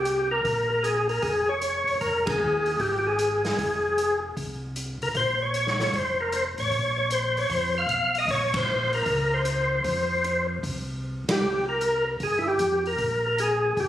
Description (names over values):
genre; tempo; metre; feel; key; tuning
soul jazz organ trio; 153 BPM; 4/4; swing 66% on 8ths; F minor; A4 = 440 Hz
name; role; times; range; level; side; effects
percussive tonewheel organ; melody; 0.0-13.9 s; E4 to F5; -23 LUFS; left 1 dB; slow rotary speaker, overdrive, chorus vibrato, plate reverb
mellow tonewheel organ; bass; 0.0-13.9 s; F1 to F2; -32 LUFS; equal; slow rotary speaker
swinging big-band drum kit; drums; 0.1-13.9 s; hi-hat, kick drum, ride cymbal, snare drum; -33 LUFS; right 1 dB; none
room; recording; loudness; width
wet small room reverb, RT60 0.5 s; recorded on a phone in the room, studio reverb, compression; -23 LUFS; side -12 dB against mid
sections
0.0-13.9 A section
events
band accent 2.2, 8.5, 11.2; drum fill 11.0-11.4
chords
0.5 Bbm; 2.0 Fm7; 5.2 Bbmadd9; 9.9 F5; 11.4 C5; 13.0 Bb5